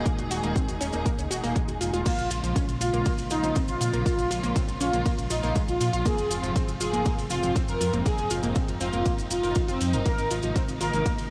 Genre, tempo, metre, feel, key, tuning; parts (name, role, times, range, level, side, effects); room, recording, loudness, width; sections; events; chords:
melodic techno; 120 BPM; 4/4; straight; Bb minor; A4 = 445 Hz
rich studio string section; sustained chords; 0.0-11.3 s; Ab2 to Ab4; -35 LUFS; equal; sidechain pumping, cassette tape
dark detuned saw bass; bass; 0.0-11.3 s; Eb1 to Bb2; -33 LUFS; equal; sidechain pumping
unison pluck; arpeggios; 0.1-11.2 s; F3 to Bb4; -35 LUFS; equal; sidechain pumping, cassette tape, analog delay
electronic kick drum; drums; 0.1-11.2 s; -29 LUFS; equal; cassette tape
house drum kit; drums; 0.1-11.3 s; crash cymbal, hi-hat, ride cymbal; -42 LUFS; equal; sidechain pumping on hats, cassette tape, sidechain pumping on cymbals
maracas; percussion; 0.1-11.3 s; -40 LUFS; equal
soft supersaw; melody; 2.1-11.1 s; C4 to Bb4; -32 LUFS; equal; sidechain pumping, cassette tape, analog delay
light reverb; home recording on cassette; -26 LUFS; mono
0.0-11.3 A section
0.0 Ebsus4; 2.1 Bbm7; 6.1 Fm; 10.1 Abadd9